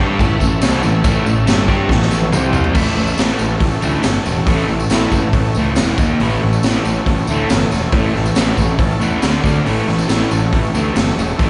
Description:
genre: garage rock duo or trio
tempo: 139 BPM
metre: 4/4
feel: straight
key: A mixolydian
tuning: A4 = 440 Hz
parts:
  - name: combo organ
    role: sustained chords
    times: 0.0-11.5 s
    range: E4 to C#6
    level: -29 LUFS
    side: equal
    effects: none
  - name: fuzz guitar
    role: riff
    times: 0.0-11.5 s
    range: E2 to G4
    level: -20 LUFS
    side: equal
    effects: distortion, slapback echo
  - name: fuzz picked electric bass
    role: bass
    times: 0.0-11.5 s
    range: E1 to G2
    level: -22 LUFS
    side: equal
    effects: overdrive
  - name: raw garage drum kit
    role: drums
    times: 0.2-11.5 s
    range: crash cymbal, hi-hat, kick drum, snare drum, toms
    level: -20 LUFS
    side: equal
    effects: none
  - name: tambourine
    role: percussion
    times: 0.2-11.5 s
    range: none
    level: -34 LUFS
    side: equal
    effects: none
room: light reverb, small room ambience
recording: live gig heard through the venue's PA, club reverb, nothing above 10.7 kHz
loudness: -16 LUFS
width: mono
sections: 0.0-2.8 A section; 2.8-11.5 B section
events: drum fill 1.9-2.8; transistor combo organ fill 8.4-9.7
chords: 0.0 A; 2.3 C5; 2.8 A; 5.8 E5; 6.0 D#5; 6.2 A; 9.2 D5; 9.7 A

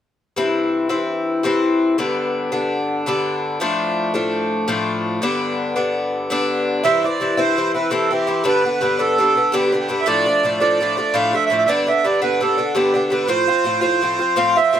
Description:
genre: celtic folk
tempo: 112 BPM (dotted quarters)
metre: 9/8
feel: straight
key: C major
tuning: A4 = 439 Hz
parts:
  - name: Irish bouzouki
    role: accompaniment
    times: 0.4-14.8 s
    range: G2 to F4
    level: -18 LUFS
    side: left 2 dB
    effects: none
  - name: accordion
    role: melody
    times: 6.8-14.8 s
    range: G4 to F5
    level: -17 LUFS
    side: right 4 dB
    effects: none
room: light reverb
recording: none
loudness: -16 LUFS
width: side -9 dB against mid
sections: 0.4-6.8 A section; 6.8-14.8 B section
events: none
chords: 0.4 C; 2.0 G; 3.6 Dm/A; 5.2 G; 6.8 C; 8.5 G; 10.1 Dm/A; 11.7 G; 13.3 F

